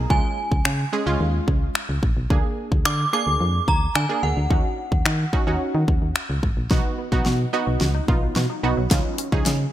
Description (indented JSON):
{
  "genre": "dance-pop",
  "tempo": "109 BPM",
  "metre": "4/4",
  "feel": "straight",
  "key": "unclear",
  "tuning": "A4 = 440 Hz",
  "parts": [
    { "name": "synth chime", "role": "melody", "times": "0.0-6.1 s", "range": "F#5 to D6", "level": "-26 LUFS", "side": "right 2 dB", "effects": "ensemble chorus, digital delay" },
    { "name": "solid FM bass", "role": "bass", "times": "0.0-9.7 s", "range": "G#1 to D#3", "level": "-23 LUFS", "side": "equal", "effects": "sidechain pumping" },
    { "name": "analog pluck", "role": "accompaniment", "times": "0.1-9.6 s", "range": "G#3 to G#4", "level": "-27 LUFS", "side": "right 2 dB", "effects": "chorus, sidechain pumping" },
    { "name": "pop drum kit", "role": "drums", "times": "0.1-9.6 s", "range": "finger snaps, hi-hat, kick drum, snare drum", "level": "-22 LUFS", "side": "equal", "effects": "gated reverb" },
    { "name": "tight sequenced synth", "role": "arpeggios", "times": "6.7-9.6 s", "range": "E#3 to F#4", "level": "-33 LUFS", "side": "equal", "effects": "none" }
  ],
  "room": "light reverb",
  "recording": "bright 1980s-style digital production",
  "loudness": "-19 LUFS",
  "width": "side -12 dB against mid",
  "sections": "0.0-6.7 A section; 6.7-9.7 B section",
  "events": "build-up 6.7-9.7; drum fill 6.7-9.7; filter sweep 6.7-9.7",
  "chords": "0.1 C#; 2.3 A#7/D; 4.5 D#m7; 6.7 B; 8.9 C#add9"
}